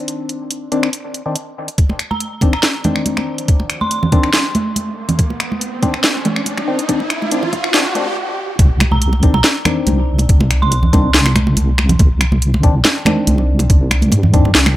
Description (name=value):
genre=deep dubstep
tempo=141 BPM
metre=4/4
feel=half-time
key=C minor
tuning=A4 = 440 Hz
part: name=percussive organ stab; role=stabs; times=0.0-14.5 s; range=Eb3 to D4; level=-22 LUFS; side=left 3 dB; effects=chorus, phaser, cassette tape, dub echo
part: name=garage drum kit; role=drums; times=0.1-14.7 s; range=finger snaps, hi-hat, snare drum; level=-16 LUFS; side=equal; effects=overdrive
part: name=electronic kick drum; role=drums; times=1.8-14.4 s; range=none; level=-13 LUFS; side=equal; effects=none
part: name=riser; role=sound effects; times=4.4-8.2 s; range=none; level=-23 LUFS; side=right 1 dB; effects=none
part: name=congas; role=percussion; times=1.9-14.7 s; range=none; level=-19 LUFS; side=right 2 dB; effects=none
part: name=dark detuned synth bell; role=melody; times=2.1-4.4, 8.9-11.2 s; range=Bb5 to C6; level=-25 LUFS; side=right 2 dB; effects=chorus, dub echo
part: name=deep soft wobble bass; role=bass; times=8.6-14.8 s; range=C2 to G2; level=-14 LUFS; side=equal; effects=chorus
room=light reverb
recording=high-pass filter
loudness=-13 LUFS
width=side -14 dB against mid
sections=0.0-1.8 A section; 1.8-8.6 B section; 8.6-14.8 C section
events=build-up 1.8-8.6; riser 4.4-8.2; stop 8.2-8.6; drop 8.6-14.8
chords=0.0 Cmadd9